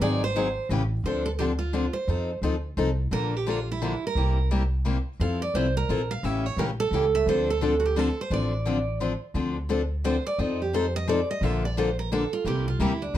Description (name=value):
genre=acoustic string swing (jazz manouche)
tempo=174 BPM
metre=3/4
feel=swing 62% on 8ths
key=D minor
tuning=A4 = 438 Hz
part: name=picked steel-string acoustic guitar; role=melody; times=0.0-13.1 s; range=D4 to F5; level=-28 LUFS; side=right 4 dB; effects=none
part: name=picked steel-string acoustic guitar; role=accompaniment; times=0.0-13.2 s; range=C3 to A4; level=-28 LUFS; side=left 4 dB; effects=none
part: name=upright bass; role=bass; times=0.0-13.2 s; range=Ab1 to F2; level=-28 LUFS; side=equal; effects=none
room=moderate studio reverb, RT60 0.7 s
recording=dark, warm production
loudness=-24 LUFS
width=side -12 dB against mid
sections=0.0-1.0 A section; 1.0-9.3 B section; 9.3-13.2 C section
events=steel-string acoustic guitar solo 9.3-13.2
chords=0.0 Ab7; 0.7 A7; 1.0 Dm7; 2.1 F7; 3.1 Bbmaj7; 4.2 C7; 5.2 Fmaj7; 6.2 A7; 7.3 Dm7; 10.4 F7; 11.4 Bbmaj7; 12.5 C7